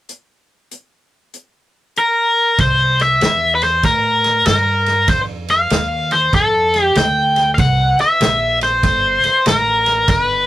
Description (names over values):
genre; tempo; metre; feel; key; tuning
electric blues shuffle; 96 BPM; 4/4; swing 65% on 8ths; C mixolydian; A4 = 440 Hz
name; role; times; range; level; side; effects
warm soul drum kit; drums; 0.1-10.3 s; hi-hat, kick drum, ride cymbal, snare drum; -20 LUFS; right 1 dB; none
biting overdriven guitar; melody; 2.0-10.5 s; A4 to G5; -13 LUFS; left 1 dB; none
upright bass; bass; 2.6-10.5 s; G1 to A2; -22 LUFS; equal; none
room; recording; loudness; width
moderate booth ambience, RT60 0.2 s; rough rehearsal-room recording; -12 LUFS; side -14 dB against mid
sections
0.1-2.6 A section; 2.6-10.5 B section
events
none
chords
0.1 N.C.; 2.6 C7; 5.1 F7; 7.6 C7